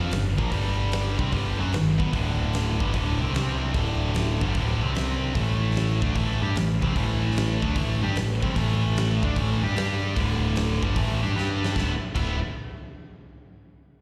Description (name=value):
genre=blues rock power trio and southern rock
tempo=150 BPM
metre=4/4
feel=swing 66% on 8ths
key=unclear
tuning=A4 = 440 Hz
part: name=tight distorted guitar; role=riff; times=0.0-12.4 s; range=D2 to G4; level=-30 LUFS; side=equal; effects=distortion, slapback echo
part: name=growling picked electric bass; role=bass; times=0.0-12.4 s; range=D1 to G2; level=-28 LUFS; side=equal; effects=overdrive
part: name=huge arena drum kit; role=drums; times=0.1-12.3 s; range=crash cymbal, hi-hat, kick drum, snare drum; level=-32 LUFS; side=equal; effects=none
room=small room ambience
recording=live gig heard through the venue's PA, recital hall reverb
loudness=-25 LUFS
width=mono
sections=0.0-11.8 A section; 11.8-13.4 B section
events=drum fill 11.4-11.8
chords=0.0 G5; 1.1 G#m; 2.1 D5; 3.3 C5; 3.7 D5; 5.0 C5; 5.4 A5; 9.8 G5; 10.2 D5; 11.0 A5; 11.4 G5; 11.8 Dsus2